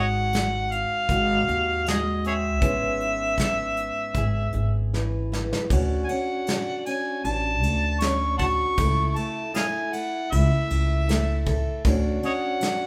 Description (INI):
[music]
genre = acoustic folk-pop ballad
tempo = 78 BPM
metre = 4/4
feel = straight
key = unclear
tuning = A4 = 440 Hz
[part]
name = mellow harmonica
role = melody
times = 0.0-12.9 s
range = G#4 to C#6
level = -28 LUFS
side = equal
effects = none
[part]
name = fingerpicked steel-string acoustic guitar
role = accompaniment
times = 0.0-12.9 s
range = G#2 to A4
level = -32 LUFS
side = equal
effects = none
[part]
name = upright bass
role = bass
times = 0.0-12.2 s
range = G#1 to D#2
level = -28 LUFS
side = equal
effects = none
[part]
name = soft brush drum kit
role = drums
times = 0.3-12.8 s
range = hi-hat, kick drum, ride cymbal, snare drum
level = -31 LUFS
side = equal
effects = none
[sound]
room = wet large studio reverb, RT60 0.9 s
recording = band playing live in one room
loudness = -24 LUFS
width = mono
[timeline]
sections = 0.0-5.7 A section; 5.7-12.9 B section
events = drum fill 4.9-5.7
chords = 0.0 G#7; 2.6 C#m7/G#; 5.7 Dmaj7; 8.8 F#m7/C#; 11.9 Dmaj7